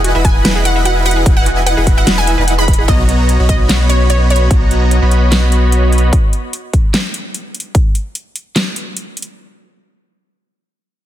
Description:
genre	future bass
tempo	148 BPM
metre	4/4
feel	swing 53% on 16ths, half-time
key	unclear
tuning	A4 = 438 Hz
part	wide unison pluck	arpeggios	0.0-2.8 s	F#4 to G#5	-23 LUFS	right 4 dB	sidechain pumping, ping-pong delay
part	dense compressed supersaw	riff	0.0-6.1 s	B3 to B5	-17 LUFS	right 1 dB	sidechain pumping, low-pass filter, ping-pong delay
part	saturated sub bass	bass	0.0-6.1 s	E1 to B1	-13 LUFS	equal	sidechain pumping
part	dubstep drum kit	drums	0.0-9.3 s	handclaps, hi-hat, snare drum	-18 LUFS	equal	none
part	wide unison pluck	melody	0.2-4.5 s	C#5 to B5	-19 LUFS	equal	sidechain pumping, dub echo
part	electronic kick drum	drums	0.2-7.8 s	none	-12 LUFS	equal	none
room	little or no reverb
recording	dense, heavily limited modern master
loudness	-10 LUFS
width	side -12 dB against mid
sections	0.0-2.9 A section; 2.9-9.4 B section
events	drop 0.0-2.9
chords	0.0 Emaj9; 2.9 Bmaj7; 6.1 N.C.

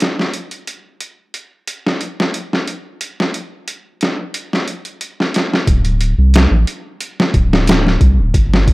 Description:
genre	trip hop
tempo	90 BPM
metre	4/4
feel	straight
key	unclear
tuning	A4 = 440 Hz
part	trip hop sampler-style drum kit	drums	0.0-8.7 s	hi-hat, kick drum, snare drum	-15 LUFS	equal	high-pass filter on hats, high-pass filter on snare, high-pass filter on kick
part	soft dub sub bass	bass	5.7-8.7 s	D1 to C2	-13 LUFS	equal	none
room	digital ambience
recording	none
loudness	-13 LUFS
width	side -22 dB against mid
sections	0.0-5.7 A section; 5.7-8.7 B section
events	none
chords	none

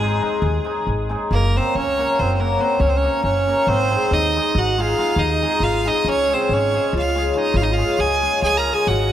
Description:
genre	balkan folk, Balkan wedding band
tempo	278 BPM (eighths)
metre	11/8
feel	straight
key	unclear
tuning	A4 = 440 Hz
part	bright fiddle	melody	0.0-9.1 s	Ab4 to Bb5	-21 LUFS	right 1 dB	tape echo
part	warm clarinet	second line	0.0-9.1 s	Ab3 to Bb4	-25 LUFS	right 6 dB	none
part	cimbalom	accompaniment	0.0-9.1 s	Ab3 to Bb4	-22 LUFS	left 4 dB	none
part	upright bass	bass	0.0-9.1 s	Gb1 to Eb2	-22 LUFS	equal	none
room	moderate concert hall reverb, RT60 2.4 s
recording	none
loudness	-16 LUFS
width	side -11 dB against mid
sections	0.0-1.3 A section; 1.3-9.1 B section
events	none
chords	0.0 Ab; 1.3 Gb; 3.7 Ab; 6.1 Db

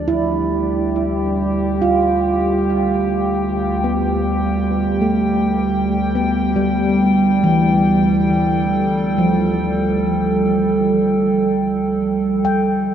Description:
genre	ambient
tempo	52 BPM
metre	3/4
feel	straight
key	unclear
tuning	A4 = 440 Hz
part	warbly tape-like pad	sustained chords	0.0-12.9 s	D2 to G5	-17 LUFS	right 1 dB	chorus, built-in reverb
part	handpan	arpeggios	0.1-12.9 s	E3 to G5	-20 LUFS	equal	tape echo
room	wet huge ambient reverb, RT60 8.2 s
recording	nothing above 7.5 kHz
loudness	-15 LUFS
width	side -9 dB against mid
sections	0.0-12.9 A section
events	none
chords	0.0 Fsus2/D

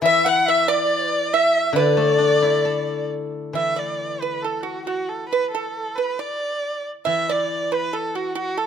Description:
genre	chinese traditional, Chinese chamber ensemble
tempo	68 BPM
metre	2/4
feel	rubato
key	D gong mode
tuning	A4 = 441 Hz
part	bright reedy large dizi	second line	0.0-3.1 s	D5 to F#5	-23 LUFS	left 7 dB	none
part	steel-string zither	accompaniment	0.0-8.7 s	D3 to A4	-24 LUFS	left 4 dB	none
part	rich erhu	melody	0.1-8.7 s	F#4 to F#5	-23 LUFS	right 1 dB	none
part	pipa	second line	0.1-8.7 s	F#4 to F#5	-24 LUFS	right 7 dB	none
room	light reverb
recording	close, detailed microphones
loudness	-19 LUFS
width	side -8 dB against mid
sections	0.0-3.5 A section; 3.5-8.7 B section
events	none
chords	none

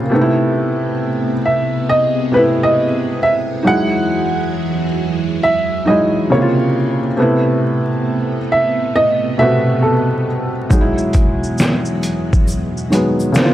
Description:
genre	lo-fi hip hop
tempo	68 BPM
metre	4/4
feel	swing 66% on 16ths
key	E major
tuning	A4 = 440 Hz
part	felt-muted upright piano	accompaniment	0.0-13.5 s	B2 to F#4	-17 LUFS	equal	none
part	string machine, full ensemble	sustained chords	0.0-13.5 s	E2 to G#4	-21 LUFS	equal	ensemble chorus
part	dark upright piano	melody	1.5-10.5 s	A4 to F#5	-17 LUFS	right 1 dB	none
part	trip hop sampler-style drum kit	drums	10.7-13.5 s	hi-hat, kick drum, shaker, snare drum	-14 LUFS	equal	overdrive
part	egg shaker	percussion	10.7-13.5 s	none	-36 LUFS	left 5 dB	none
room	light reverb, small room ambience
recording	vinyl crackle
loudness	-13 LUFS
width	side -13 dB against mid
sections	0.0-13.5 A section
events	none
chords	0.1 Amadd9; 3.6 Emaj9; 6.3 A#madd9; 7.2 Amadd9; 10.7 Emaj9

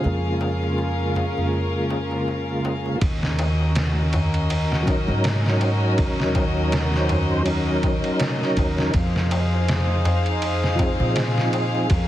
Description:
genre	trip hop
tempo	81 BPM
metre	4/4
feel	swing 56% on 16ths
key	Eb dorian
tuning	A4 = 440 Hz
part	tonewheel organ	accompaniment	0.0-11.9 s	Db3 to C5	-25 LUFS	equal	chorus vibrato, slow rotary speaker, tremolo, tape echo
part	warm studio string section	sustained chords	0.0-12.1 s	Db4 to F5	-28 LUFS	left 2 dB	none
part	upright bass	bass	0.0-12.1 s	Eb2 to Bb2	-23 LUFS	equal	none
part	darbuka	percussion	0.0-12.1 s	none	-30 LUFS	left 1 dB	none
part	trip hop sampler-style drum kit	drums	3.0-12.1 s	kick drum, ride cymbal, snare drum	-25 LUFS	equal	small room ambience
room	small room ambience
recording	heavily compressed radio sound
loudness	-19 LUFS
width	side -13 dB against mid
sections	0.0-3.0 A section; 3.0-12.1 B section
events	none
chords	0.1 Bbm7/F; 3.0 Ebm7; 8.9 Fm7

